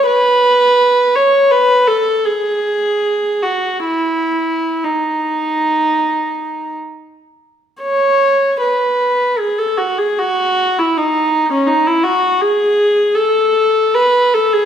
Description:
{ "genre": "classical, free, expressive piece for unaccompanied viola", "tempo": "47-85 BPM", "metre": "3/4", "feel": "rubato", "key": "unclear", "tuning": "A4 = 439 Hz", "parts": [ { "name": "warm viola", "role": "solo", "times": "0.0-14.7 s", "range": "C#4 to C#5", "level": "-12 LUFS", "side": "equal", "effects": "none" } ], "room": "moderate recital hall reverb, RT60 1.4 s", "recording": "minimal, uncompressed stereo recording", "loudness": "-12 LUFS", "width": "side -8 dB against mid", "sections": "0.0-7.8 A section; 7.8-14.7 B section", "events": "none", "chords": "none", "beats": "| 0.05 0.78 1.51 | 2.25 3.01 3.84 | 4.83 5.83 6.76 | 7.82 8.62 9.38 | 10.17 10.96 11.68 | 12.42 13.16 13.95" }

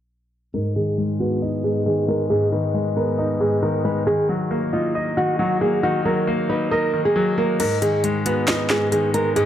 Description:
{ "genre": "hip hop, trap", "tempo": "136 BPM", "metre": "4/4", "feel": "half-time", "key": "G# minor", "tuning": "A4 = 437 Hz", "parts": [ { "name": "nylon-string guitar", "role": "melody", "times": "0.5-9.5 s", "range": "E#4 to B4", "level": "-22 LUFS", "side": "right 1 dB", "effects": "low-pass filter, tape echo" }, { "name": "warm concert grand piano", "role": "accompaniment", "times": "0.5-9.5 s", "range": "G#2 to D#5", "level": "-21 LUFS", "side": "left 2 dB", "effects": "low-pass filter" }, { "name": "trap drum kit", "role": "drums", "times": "7.6-9.5 s", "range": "crash cymbal, handclaps, hi-hat, snare drum", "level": "-24 LUFS", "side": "equal", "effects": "overdrive" } ], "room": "light reverb, studio reverb", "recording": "dark, warm production", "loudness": "-18 LUFS", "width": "side -10 dB against mid", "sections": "0.5-7.6 A section; 7.6-9.5 B section", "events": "filter sweep 0.5-7.6; kick muted 7.6-9.5", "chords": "0.5 G#m; 4.1 D#m; 7.6 G#m", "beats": "| 0.54 0.98 1.42 1.86 | 2.30 2.74 3.19 3.63 | 4.07 4.51 4.95 5.39 | 5.83 6.27 6.71 7.16 | 7.60 8.04 8.48 8.92 | 9.36" }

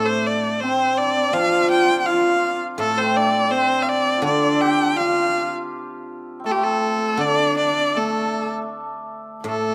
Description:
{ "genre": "chinese traditional, Chinese chamber ensemble", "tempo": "82 BPM", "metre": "4/4", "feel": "rubato", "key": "A jue mode", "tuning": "A4 = 440 Hz", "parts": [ { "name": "clear erhu", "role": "melody", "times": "0.0-9.7 s", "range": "G4 to G5", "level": "-23 LUFS", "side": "equal", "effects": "none" }, { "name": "hammered dulcimer", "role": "second line", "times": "0.0-9.7 s", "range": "A3 to A4", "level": "-27 LUFS", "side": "equal", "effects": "none" }, { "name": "warm horsehead fiddle", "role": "second line", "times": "0.0-9.7 s", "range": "A3 to F4", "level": "-26 LUFS", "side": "equal", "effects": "none" }, { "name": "guzheng", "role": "accompaniment", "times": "0.0-9.7 s", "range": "A2 to F3", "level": "-31 LUFS", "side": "equal", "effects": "none" } ], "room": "light reverb", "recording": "close, detailed microphones", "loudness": "-20 LUFS", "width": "mono", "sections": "0.0-9.7 A section", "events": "none", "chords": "none", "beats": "0.62 1.35 2.08 | 2.80 3.52 4.24 4.97 | 5.70 6.44 7.20 7.96 | 8.72 9.46" }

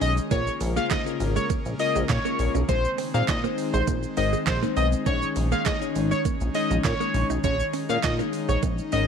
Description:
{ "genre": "dance-pop", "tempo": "101 BPM", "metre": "4/4", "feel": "straight", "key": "unclear", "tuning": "A4 = 440 Hz", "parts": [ { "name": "octave-doubled lead", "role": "melody", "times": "0.0-9.1 s", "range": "C5 to F5", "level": "-28 LUFS", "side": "equal", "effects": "chorus, tape echo" }, { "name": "glassy digital keys", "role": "accompaniment", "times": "0.0-9.1 s", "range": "Ab3 to Db5", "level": "-30 LUFS", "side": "left 14 dB", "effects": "chorus, sidechain pumping" }, { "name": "airy breathy pad", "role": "sustained chords", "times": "0.0-9.1 s", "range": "Db3 to Eb4", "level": "-32 LUFS", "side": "equal", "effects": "chorus, sidechain pumping" }, { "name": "direct-recorded clean electric guitar", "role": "riff", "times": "0.0-9.0 s", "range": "Ab3 to Eb4", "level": "-33 LUFS", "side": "right 16 dB", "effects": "analog chorus" }, { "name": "chorused synth bass", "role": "bass", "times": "0.0-9.1 s", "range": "Ab1 to Bb2", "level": "-26 LUFS", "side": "equal", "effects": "sidechain pumping" }, { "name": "pop drum kit", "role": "drums", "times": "0.0-9.1 s", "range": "handclaps, hi-hat, kick drum, shaker, snare drum", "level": "-29 LUFS", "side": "right 3 dB", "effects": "overdrive" }, { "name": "group handclap", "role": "percussion", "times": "0.9-8.2 s", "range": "none", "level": "-42 LUFS", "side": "right 15 dB", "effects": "none" } ], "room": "digital ambience", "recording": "1960s-style stereo with parts hard left and right", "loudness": "-22 LUFS", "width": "side -7 dB against mid", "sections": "0.0-9.1 A section", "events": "none", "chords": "0.3 Bbm7; 2.7 Ab/Bb; 5.1 Dbsus2", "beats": "| 0.31 0.91 1.50 2.09 | 2.69 3.28 3.88 4.47 | 5.06 5.66 6.25 6.84 | 7.44 8.03 8.63" }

